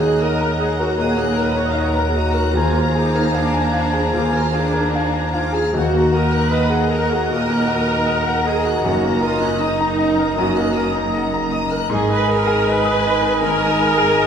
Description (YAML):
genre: classical, romantic movement for piano and orchestra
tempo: 77 BPM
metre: 4/4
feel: rubato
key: Eb minor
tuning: A4 = 442 Hz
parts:
  - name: clear concert grand piano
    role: melody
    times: 0.0-14.3 s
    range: Eb2 to Eb6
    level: -21 LUFS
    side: left 1 dB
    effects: none
  - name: warm symphonic violin section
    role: melody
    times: 0.0-14.3 s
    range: Ab5 to Bb5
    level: -30 LUFS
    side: left 3 dB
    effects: none
  - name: dark clarinet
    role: second line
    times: 0.0-14.3 s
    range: Db4 to F5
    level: -28 LUFS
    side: left 1 dB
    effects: none
  - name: mellow concert flute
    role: second line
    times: 0.0-14.3 s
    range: Ab5 to Bb5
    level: -28 LUFS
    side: left 2 dB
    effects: none
  - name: warm oboe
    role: second line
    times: 0.0-14.3 s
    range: Eb5 to Ab5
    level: -29 LUFS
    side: equal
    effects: none
  - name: warm symphonic violin section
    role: second line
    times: 0.0-14.3 s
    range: Eb5 to Gb6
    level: -29 LUFS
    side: equal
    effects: none
  - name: mellow bassoon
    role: accompaniment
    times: 0.0-14.3 s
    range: Eb3 to Gb3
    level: -27 LUFS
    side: right 1 dB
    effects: none
  - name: warm symphonic viola section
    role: accompaniment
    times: 0.0-14.3 s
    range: Db4 to F5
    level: -22 LUFS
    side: right 2 dB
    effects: none
  - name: rich studio cello section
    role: bass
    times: 0.0-14.3 s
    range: Eb2 to Ab2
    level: -29 LUFS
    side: right 3 dB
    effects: none
  - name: warm studio double bass section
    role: bass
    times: 0.0-14.3 s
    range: Gb1 to Eb2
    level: -26 LUFS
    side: right 2 dB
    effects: none
  - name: mellow French horn section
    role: sustained chords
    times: 1.0-13.7 s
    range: Ab3 to Ab4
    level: -29 LUFS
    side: left 1 dB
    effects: none
  - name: timpani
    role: percussion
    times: 2.6-6.9 s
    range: none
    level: barely audible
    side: none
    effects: none
room: wet recital hall reverb, RT60 1.4 s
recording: recorded in a church or concert hall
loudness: -16 LUFS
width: side -8 dB against mid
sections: 0.0-14.3 A section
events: none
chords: 0.0 Ebm; 2.6 Bb7/Eb; 5.7 Ebm; 8.8 Ebm/Gb; 11.9 Abm